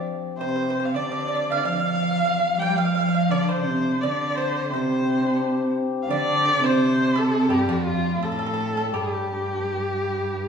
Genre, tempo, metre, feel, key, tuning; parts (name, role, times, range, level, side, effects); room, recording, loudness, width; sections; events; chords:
chinese traditional, Chinese chamber ensemble; 84 BPM; 4/4; rubato; G shang mode; A4 = 439 Hz
warm erhu; melody; 0.0-10.5 s; F4 to G5; -25 LUFS; equal
clear cello; second line; 0.0-10.5 s; F2 to G3; -24 LUFS; right 1 dB
hammered dulcimer; accompaniment; 0.0-10.5 s; C3 to G4; -31 LUFS; left 4 dB
pipa; second line; 0.4-10.5 s; F4 to G5; -29 LUFS; right 3 dB
wet recital hall reverb, RT60 1.8 s; heard from further back in the room, small room ambience; -20 LUFS; side -6 dB against mid
0.0-10.5 A section